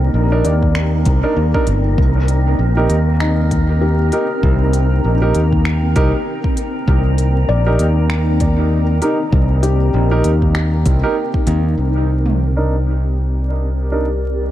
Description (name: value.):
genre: ambient dub.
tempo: 98 BPM.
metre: 4/4.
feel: swing 58% on 16ths.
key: unclear.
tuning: A4 = 440 Hz.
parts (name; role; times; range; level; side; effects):
granular cloud pad; sustained chords; 0.0-14.5 s; C4 to Bb5; -23 LUFS; left 1 dB; built-in reverb.
felt-muted upright piano; arpeggios; 0.0-11.8 s; Eb4 to D5; -26 LUFS; left 5 dB; low-pass filter, dub echo.
modern bright fingered electric bass; bass; 0.0-14.5 s; G1 to Eb2; -15 LUFS; equal; none.
wind-like tuned noise texture; texture; 0.0-11.8 s; Bb3 to Bb4; -29 LUFS; right 1 dB; built-in reverb.
warm upright piano; stabs; 0.3-14.1 s; D4 to Bb4; -23 LUFS; right 2 dB; low-pass filter, dub echo.
organic electronic drum kit; drums; 0.4-12.4 s; finger snaps, hi-hat, toms; -28 LUFS; equal; dub echo.
electronic kick drum; drums; 0.6-11.4 s; none; -18 LUFS; equal; none.
room: little or no reverb.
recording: vinyl crackle.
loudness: -13 LUFS.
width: side -13 dB against mid.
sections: 0.0-11.8 A section; 11.8-14.5 B section.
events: filter sweep on upright piano 11.8-14.5.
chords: 0.0 Cm9; 2.0 Eb; 11.8 Cm9.